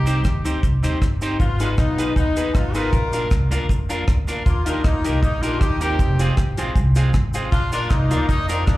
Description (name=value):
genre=ska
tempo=157 BPM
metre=4/4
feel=swing 53% on 8ths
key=unclear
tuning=A4 = 442 Hz
part: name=warm horn section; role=melody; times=0.0-8.8 s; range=Bb3 to Bb4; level=-25 LUFS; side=left 2 dB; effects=tape echo, slapback echo
part: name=upright bass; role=bass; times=0.0-8.8 s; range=F1 to F2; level=-22 LUFS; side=equal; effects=none
part: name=clean electric guitar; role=accompaniment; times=0.1-8.7 s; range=Ab3 to C5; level=-29 LUFS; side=right 3 dB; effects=tube saturation, slapback echo
part: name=warm upright piano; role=stabs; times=0.1-8.6 s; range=D4 to D5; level=-30 LUFS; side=left 3 dB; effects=slapback echo
part: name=deep reggae drum kit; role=drums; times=0.1-8.8 s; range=hi-hat, kick drum, rim click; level=-20 LUFS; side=equal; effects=none
part: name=cabasa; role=percussion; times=0.1-8.8 s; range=none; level=-42 LUFS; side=right 2 dB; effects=tape echo
room=light reverb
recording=live gig heard through the venue's PA, club reverb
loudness=-17 LUFS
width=side -17 dB against mid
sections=0.0-8.8 A section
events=none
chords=0.0 Cm; 1.4 Abm; 2.9 Bb; 4.5 Eb; 6.0 Fm; 7.5 Bb